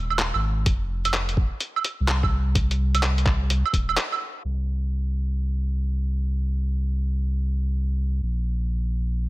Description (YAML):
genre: future garage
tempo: 127 BPM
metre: 4/4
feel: swing 65% on 16ths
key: unclear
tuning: A4 = 444 Hz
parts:
  - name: warm sub bass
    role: bass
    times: 0.0-9.3 s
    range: Eb1 to C2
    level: -23 LUFS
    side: equal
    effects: tube saturation, sidechain pumping
  - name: lo-fi sampler-style drum kit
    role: drums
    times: 0.1-4.2 s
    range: claves, handclaps, hi-hat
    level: -25 LUFS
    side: right 2 dB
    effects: low-pass filter on perc, low-pass filter on hats, low-pass filter on snare
  - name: electronic kick drum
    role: drums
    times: 0.7-3.9 s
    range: none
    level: -22 LUFS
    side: equal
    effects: none
room: digital ambience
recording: low-pass filter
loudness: -22 LUFS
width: side -19 dB against mid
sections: 0.0-4.4 A section; 4.4-9.3 B section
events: break 4.0-4.4; filter sweep 4.4-9.3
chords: none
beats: 0.19 | 0.66 1.13 1.60 2.08 | 2.55 3.02 3.50 3.97 | 4.44 4.91 5.38 5.86 | 6.33 6.80 7.27 7.75 | 8.22 8.69 9.16